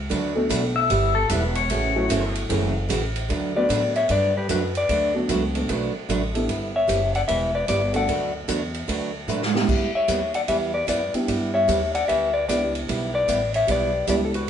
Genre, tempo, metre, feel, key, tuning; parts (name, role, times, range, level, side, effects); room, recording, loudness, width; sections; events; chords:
country, western swing; 150 BPM; 4/4; swing 65% on 8ths; A4 = 439 Hz
upright bass; bass; 0.0-14.5 s; E1 to A2; -28 LUFS; equal
picked steel-string acoustic guitar; accompaniment; 0.1-14.5 s; C#3 to B4; -27 LUFS; right 4 dB
swinging big-band drum kit; drums; 0.1-14.4 s; crash cymbal, hi-hat, kick drum, ride cymbal, snare drum; -30 LUFS; right 2 dB
dark upright piano; accompaniment; 0.3-14.3 s; F#3 to A4; -27 LUFS; equal
pedal steel guitar; second line; 0.8-2.3 s; A4 to E5; -24 LUFS; left 4 dB
clean lap steel guitar; melody; 3.6-14.5 s; F#4 to F#5; -22 LUFS; left 3 dB
wet stone room reverb, RT60 0.9 s; band playing live in one room, nothing above 10.5 kHz; -20 LUFS; side -9 dB against mid
0.0-3.3 A section; 3.3-14.5 B section
pedal steel guitar solo 0.0-3.3; drum fill 9.3-9.7
0.1 D6; 0.9 G6; 1.7 A6; 3.3 D6; 6.5 G6; 8.1 D6; 9.7 G6